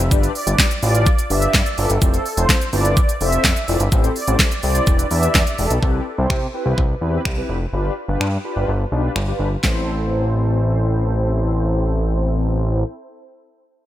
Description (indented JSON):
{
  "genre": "dance-pop",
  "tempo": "126 BPM",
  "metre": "4/4",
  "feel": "straight",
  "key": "A minor",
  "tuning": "A4 = 440 Hz",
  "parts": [
    { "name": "fat analog bass", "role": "bass", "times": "0.0-12.8 s", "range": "E1 to C3", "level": "-19 LUFS", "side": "equal", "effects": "sidechain pumping" },
    { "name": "mellow synth brass", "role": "accompaniment", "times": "0.1-12.8 s", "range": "C4 to F5", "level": "-24 LUFS", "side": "left 2 dB", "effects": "chorus, sidechain pumping, low-pass filter" },
    { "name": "pop drum kit", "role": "drums", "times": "0.1-9.7 s", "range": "finger snaps, handclaps, hi-hat, kick drum, shaker, snare drum", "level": "-18 LUFS", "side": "equal", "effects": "none" },
    { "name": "filtered supersaw swell", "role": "melody", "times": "0.4-5.7 s", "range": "A4 to E5", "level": "-24 LUFS", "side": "right 1 dB", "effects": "digital delay" }
  ],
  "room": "light reverb, digital ambience",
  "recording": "bright 1980s-style digital production",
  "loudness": "-16 LUFS",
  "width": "side -13 dB against mid",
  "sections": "0.0-5.8 A section; 5.8-9.6 B section; 9.6-13.4 C section",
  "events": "drop 0.0-5.8",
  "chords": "0.1 G7; 2.0 Fmaj7; 3.9 Am7; 4.9 Em7; 5.8 Cmaj7; 7.7 G7; 9.6 Am"
}